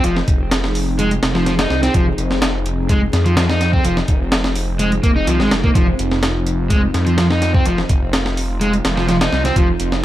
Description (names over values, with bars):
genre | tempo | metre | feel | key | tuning
breakbeat, breaks | 126 BPM | 4/4 | straight | F minor | A4 = 440 Hz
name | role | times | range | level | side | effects
phased analog pad | sustained chords | 0.0-10.0 s | F3 to Ab4 | -24 LUFS | equal | phaser, chorus, sidechain pumping
overdriven semi-hollow guitar | riff | 0.0-9.7 s | F3 to Eb4 | -20 LUFS | equal | dub echo
phased detuned saw bass | bass | 0.0-10.0 s | F1 to F2 | -20 LUFS | equal | phaser
breakbeat sampler-style drum kit | drums | 0.0-10.0 s | hi-hat, kick drum, snare drum | -18 LUFS | equal | none
room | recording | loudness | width
little or no reverb | vinyl crackle | -14 LUFS | side -14 dB against mid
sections
0.0-10.0 A section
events
none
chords
0.0 Fm7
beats
| 0.04 0.51 0.99 1.47 | 1.94 2.42 2.90 3.37 | 3.85 4.32 4.80 5.28 | 5.75 6.23 6.71 7.18 | 7.66 8.13 8.61 9.09 | 9.56 10.04